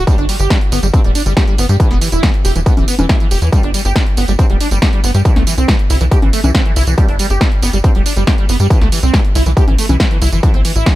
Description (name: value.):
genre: uplifting trance.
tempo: 139 BPM.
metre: 4/4.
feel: straight.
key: G major.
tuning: A4 = 439 Hz.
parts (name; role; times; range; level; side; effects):
liquid acid bass; arpeggios; 0.0-10.9 s; E3 to G4; -19 LUFS; right 2 dB; lush chorus, vintage 12-bit sampler grit, sidechain pumping, dub echo.
tight sequencer bass; bass; 0.0-10.8 s; D1 to G2; -14 LUFS; equal; sidechain pumping.
electronic kick drum; drums; 0.1-10.9 s; none; -13 LUFS; equal; distortion, overdrive.
punchy analog drum machine; drums; 0.1-10.9 s; congas, hi-hat, snare drum, tambourine; -19 LUFS; equal; none.
room: little or no reverb.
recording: none.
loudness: -10 LUFS.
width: side -16 dB against mid.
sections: 0.0-11.0 A section.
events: none.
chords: 0.1 G5; 1.8 E5; 3.5 G5; 5.3 C6; 7.0 G5; 8.7 C6.